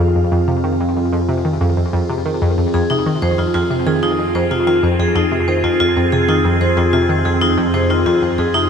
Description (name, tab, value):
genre	ambient, sequencer-driven space music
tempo	93 BPM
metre	4/4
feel	straight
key	F minor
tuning	A4 = 440 Hz
part	evolving wavetable pad	sustained chords	0.0-8.7 s	C4 to Ab4	-19 LUFS	right 1 dB	phaser, built-in reverb
part	analog pluck	riff	0.0-8.7 s	F2 to Eb3	-19 LUFS	left 1 dB	chorus, ping-pong delay
part	analog drone	bass	0.0-8.7 s	F2	-23 LUFS	equal	chorus
part	vibraphone with medium hard mallets	arpeggios	2.7-8.7 s	Eb4 to C5	-18 LUFS	left 2 dB	auto-pan, ping-pong delay
room	moderate huge ambient reverb, RT60 8.1 s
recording	none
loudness	-14 LUFS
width	side -7 dB against mid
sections	0.0-8.7 A section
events	filter sweep on synth arpeggio sound 0.0-8.7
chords	0.0 Fm7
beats	| 0.00 0.64 1.29 1.93 | 2.58 3.22 3.87 4.51 | 5.16 5.80 6.45 7.09 | 7.74 8.38